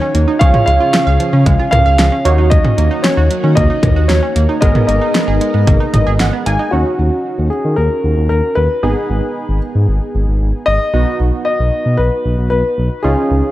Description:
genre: synth-pop.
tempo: 114 BPM.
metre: 4/4.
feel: straight.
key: Eb minor.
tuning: A4 = 436 Hz.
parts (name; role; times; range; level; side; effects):
dark concert grand piano; melody; 0.0-13.5 s; Gb4 to F5; -17 LUFS; left 1 dB; tape echo.
warm analog keys; accompaniment; 0.0-13.5 s; Cb4 to Ab5; -21 LUFS; right 2 dB; chorus.
ensemble organ-string; sustained chords; 0.0-6.7 s; Db3 to Bb4; -21 LUFS; equal; phaser, ensemble chorus.
analog pluck; arpeggios; 0.0-6.7 s; F3 to F5; -21 LUFS; right 4 dB; chorus, tape echo.
smooth synth bass; bass; 0.1-13.4 s; Ab1 to Eb3; -14 LUFS; equal; none.
pop drum kit; drums; 0.1-6.6 s; cowbell, hi-hat, kick drum, snare drum, toms; -14 LUFS; equal; none.
room: light reverb, digital ambience.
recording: dark, warm production.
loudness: -11 LUFS.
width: side -15 dB against mid.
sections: 0.0-6.7 A section; 6.7-13.5 B section.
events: synth keys fill 5.7-6.7.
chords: 0.4 Db; 2.3 Ebm7; 4.6 Abmadd9; 6.7 Ebm7; 8.8 Abm; 10.9 B.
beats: | 0.41 0.94 1.46 1.99 | 2.52 3.04 3.57 4.09 | 4.62 5.15 5.67 6.20 | 6.72 7.25 7.78 8.30 | 8.83 9.36 9.88 10.41 | 10.94 11.46 11.99 12.52 | 13.04.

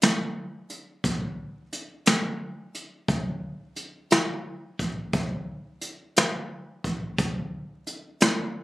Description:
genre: blues.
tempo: 59 BPM (dotted quarters).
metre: 12/8.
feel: straight.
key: none.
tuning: none.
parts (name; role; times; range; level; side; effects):
jazz brush drum kit; drums; 0.0-8.4 s; hi-hat, kick drum, snare drum; -24 LUFS; equal; none.
room: moderate studio reverb, RT60 0.5 s.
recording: recorded on a phone in the room, club reverb, compression.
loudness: -25 LUFS.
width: side -18 dB against mid.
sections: 0.0-8.6 A section.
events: none.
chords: none.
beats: 0.01 1.04 2.06 | 3.08 4.11 5.13 6.16 | 7.18 8.21.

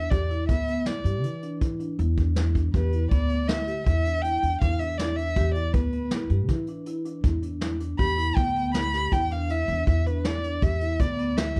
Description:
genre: progressive instrumental, band music in an uneven meter.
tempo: 160 BPM.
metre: 7/4.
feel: straight.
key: E minor.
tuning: A4 = 436 Hz.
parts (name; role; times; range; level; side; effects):
dark violin; melody; 0.0-11.6 s; B4 to B5; -31 LUFS; equal; none.
vibraphone with soft mallets; arpeggios; 0.0-11.6 s; B3 to G4; -34 LUFS; equal; none.
upright bass; bass; 0.0-11.6 s; D2 to E3; -29 LUFS; equal; none.
vintage brush drum kit; drums; 0.1-11.6 s; hi-hat, kick drum, snare drum; -30 LUFS; equal; none.
room: light reverb.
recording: dark, warm production.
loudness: -25 LUFS.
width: mono.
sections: 0.0-11.6 A section.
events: none.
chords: 0.0 Em7.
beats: | 0.11 0.49 0.86 1.24 1.61 1.99 2.36 | 2.74 3.11 3.49 3.86 4.24 4.61 4.99 | 5.36 5.74 6.11 6.49 6.86 7.24 7.61 | 7.99 8.36 8.74 9.12 9.49 9.87 10.24 | 10.62 10.99 11.37.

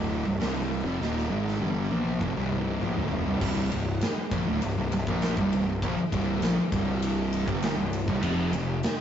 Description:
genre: stoner and doom metal.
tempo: 100 BPM.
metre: 4/4.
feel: straight.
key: C minor.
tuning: A4 = 439 Hz.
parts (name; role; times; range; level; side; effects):
thick fuzz guitar; riff; 0.0-8.8 s; C2 to Bb3; -31 LUFS; left 5 dB; distortion.
thick fuzz guitar; riff; 0.0-8.8 s; C2 to Bb3; -30 LUFS; right 4 dB; distortion.
fuzz picked electric bass; bass; 0.0-8.8 s; C1 to Bb1; -32 LUFS; left 1 dB; overdrive, tube saturation.
big rock drum kit; drums; 0.4-9.0 s; crash cymbal, hi-hat, kick drum, ride cymbal, snare drum, toms; -31 LUFS; equal; none.
sludgy distorted guitar; riff; 8.2-8.8 s; F2 to F3; -32 LUFS; right 2 dB; overdrive.
room: moderate small room ambience, RT60 0.5 s.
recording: rough rehearsal-room recording, warm saturation, nothing above 7.7 kHz.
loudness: -25 LUFS.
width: side -9 dB against mid.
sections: 0.0-3.4 A section; 3.4-9.0 B section.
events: drum fill 1.0-3.4.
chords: 0.0 Cm; 3.4 C5; 8.2 F5.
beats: 0.40 | 1.00 1.61 2.21 2.81 | 3.41 4.01 4.62 5.22 | 5.82 6.42 7.02 7.62 | 8.23 8.83.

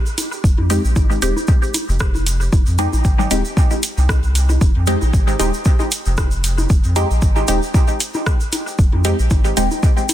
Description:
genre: dub techno.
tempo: 115 BPM.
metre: 4/4.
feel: swing 55% on 16ths.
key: F minor.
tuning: A4 = 440 Hz.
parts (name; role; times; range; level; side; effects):
egg shaker; percussion; 0.1-10.1 s; none; -28 LUFS; right 3 dB; none.
deep house drum kit; drums; 0.2-10.1 s; hi-hat, rim click; -25 LUFS; equal; soft clipping on snare, dub echo.
bongos and congas; percussion; 0.2-10.1 s; none; -28 LUFS; left 1 dB; sidechain pumping on perc, dub echo.
soft dub sub bass; bass; 0.4-9.7 s; Eb1 to F2; -18 LUFS; equal; sidechain pumping.
electronic kick drum; drums; 0.4-9.9 s; none; -15 LUFS; equal; none.
filtered dub chord stab; stabs; 0.7-9.7 s; Ab3 to G4; -22 LUFS; equal; phaser, cassette tape, dub echo.
room: little or no reverb.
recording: dense, heavily limited modern master.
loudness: -14 LUFS.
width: side -12 dB against mid.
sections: 0.0-10.1 A section.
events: none.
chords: 0.0 Fm7.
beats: | 0.44 0.96 1.48 2.00 | 2.53 3.05 3.57 4.09 | 4.61 5.13 5.66 6.18 | 6.70 7.22 7.74 8.27 | 8.79 9.31 9.83.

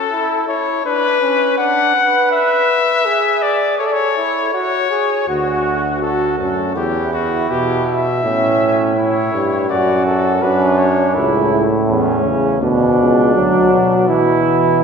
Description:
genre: classical, imitative canzona for brass ensemble.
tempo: 82 BPM.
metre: 4/4.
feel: straight.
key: D major.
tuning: A4 = 440 Hz.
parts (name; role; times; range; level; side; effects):
warm trumpet; melody; 0.0-11.2 s; F#4 to F#5; -17 LUFS; left 5 dB; none.
warm flugelhorn; second line; 0.1-14.8 s; C#4 to B4; -19 LUFS; right 4 dB; none.
bright bass trombone; bass; 5.3-14.8 s; C#2 to B2; -17 LUFS; right 1 dB; none.
warm euphonium; accompaniment; 11.2-14.8 s; A2 to F#3; -14 LUFS; equal; none.
room: wet church reverb, RT60 3.1 s.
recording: recorded in a church or concert hall.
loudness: -13 LUFS.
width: side -6 dB against mid.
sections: 0.0-5.3 A section; 5.3-14.8 B section.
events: none.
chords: 0.0 A; 0.9 Bm; 2.3 E/B; 3.8 A; 5.3 D; 6.8 Em; 8.2 A; 9.7 D/F#; 11.2 A/C#; 12.6 Bm; 14.1 E5/B.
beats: 0.12 0.85 1.59 | 2.32 3.06 3.80 4.54 | 5.29 6.03 6.76 7.50 | 8.24 8.97 9.70 10.43 | 11.15 11.89 12.62 13.35 | 14.09 14.83.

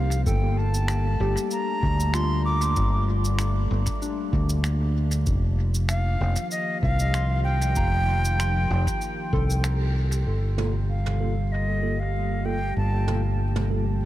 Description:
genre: ambient dub.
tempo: 96 BPM.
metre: 4/4.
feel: swing 54% on 16ths.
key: G minor.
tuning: A4 = 440 Hz.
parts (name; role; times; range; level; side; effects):
breathy silver concert flute; melody; 0.0-13.4 s; Eb5 to D6; -30 LUFS; equal; dub echo.
warbly tape-like pad; sustained chords; 0.0-14.1 s; Eb3 to F5; -33 LUFS; left 1 dB; chorus, built-in reverb.
mellow tine electric piano; stabs; 0.0-0.2, 10.6-13.8 s; Bb3 to A4; -35 LUFS; right 2 dB; medium stereo tremolo, low-pass filter, dub echo.
fingered electric bass; bass; 0.0-14.1 s; F1 to D2; -23 LUFS; equal; none.
jazz brush drum kit; drums; 0.1-13.7 s; cabasa, finger snaps, toms; -35 LUFS; right 1 dB; dub echo.
soft synth bell; arpeggios; 0.3-10.5 s; D4 to C6; -36 LUFS; left 3 dB; chorus, tape echo.
electronic kick drum; drums; 0.3-9.5 s; none; -28 LUFS; equal; none.
room: light reverb, studio reverb.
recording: none.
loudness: -22 LUFS.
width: side -14 dB against mid.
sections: 0.0-10.3 A section; 10.3-14.1 B section.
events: band accent 9.6-10.0.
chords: 0.3 Gm9; 5.3 F9sus4; 10.3 Gm9.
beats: | 0.26 0.89 1.51 2.14 | 2.76 3.39 4.01 4.64 | 5.26 5.89 6.51 7.14 | 7.76 8.39 9.01 9.64 | 10.26 10.89 11.51 12.14 | 12.76 13.39 14.01.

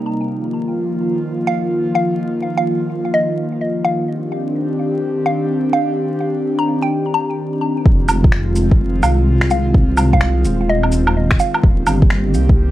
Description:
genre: future garage.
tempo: 127 BPM.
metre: 4/4.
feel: swing 64% on 16ths.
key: F dorian.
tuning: A4 = 440 Hz.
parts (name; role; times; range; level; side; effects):
mallet-like synth pluck; melody; 0.0-11.7 s; Eb5 to Bb5; -22 LUFS; equal; chorus, phaser, tape echo.
airy breathy pad; sustained chords; 0.0-12.7 s; C3 to G4; -19 LUFS; equal; chorus, sidechain pumping.
dark detuned saw bass; bass; 7.9-12.7 s; Eb1 to C2; -16 LUFS; equal; sidechain pumping.
electronic kick drum; drums; 7.9-12.6 s; none; -12 LUFS; equal; small room ambience.
electronic shaker, woodblock and finger snaps; drums; 8.1-12.5 s; none; -19 LUFS; right 1 dB; small room ambience.
room: light reverb.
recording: dry, gritty hardware recording, vinyl crackle.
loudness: -14 LUFS.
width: side -14 dB against mid.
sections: 0.0-7.9 A section; 7.9-12.7 B section.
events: none.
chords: 0.3 Bbsus4; 4.1 Cmadd9; 7.9 Fm7; 11.6 Eb6.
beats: | 0.30 0.77 1.24 1.71 | 2.19 2.66 3.13 3.60 | 4.08 4.55 5.02 5.49 | 5.97 6.44 6.91 7.38 | 7.86 8.33 8.80 9.27 | 9.74 10.22 10.69 11.16 | 11.63 12.11 12.58.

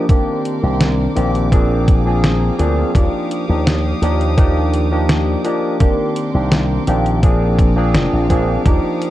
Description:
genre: vaporwave.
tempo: 84 BPM.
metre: 4/4.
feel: straight.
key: Eb major.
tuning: A4 = 435 Hz.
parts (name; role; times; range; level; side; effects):
barky tine electric piano; accompaniment; 0.0-9.1 s; Eb3 to Ab4; -18 LUFS; equal; overdrive, lush chorus, tape echo.
rich chamber string section; sustained chords; 0.0-9.1 s; G4 to Eb6; -30 LUFS; right 1 dB; none.
detuned 8-bit digital drum machine; drums; 0.1-9.1 s; hi-hat, snare drum; -19 LUFS; equal; studio reverb.
electronic kick drum; drums; 0.1-8.8 s; none; -14 LUFS; equal; studio reverb.
slap bass with an envelope filter; bass; 0.6-8.8 s; F1 to Eb2; -17 LUFS; equal; none.
room: light reverb.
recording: dark, warm production, cassette tape.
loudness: -13 LUFS.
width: side -14 dB against mid.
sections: 0.0-9.1 A section.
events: none.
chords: 0.1 Cm9; 1.5 Bb7; 2.9 Ebmaj9; 5.8 Cm9; 7.2 Bb7.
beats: | 0.09 0.80 1.52 2.23 | 2.95 3.66 4.38 5.09 | 5.80 6.52 7.23 7.95 | 8.66.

